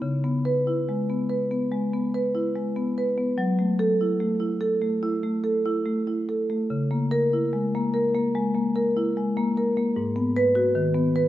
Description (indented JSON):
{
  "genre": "classical, contemporary piece for solo marimba",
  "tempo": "73 BPM",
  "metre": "4/4",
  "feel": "rubato",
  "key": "unclear",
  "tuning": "A4 = 443 Hz",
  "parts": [
    { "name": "marimba with medium mallets", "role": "solo", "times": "0.0-11.3 s", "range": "G#2 to B4", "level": "-22 LUFS", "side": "equal", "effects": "none" }
  ],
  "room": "wet concert hall reverb, RT60 1.9 s",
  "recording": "none",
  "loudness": "-22 LUFS",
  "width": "side -14 dB against mid",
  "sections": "0.0-11.3 A section",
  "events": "none",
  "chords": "0.0 C#m7; 3.4 F#m7; 6.7 C#m6; 10.0 G#m7"
}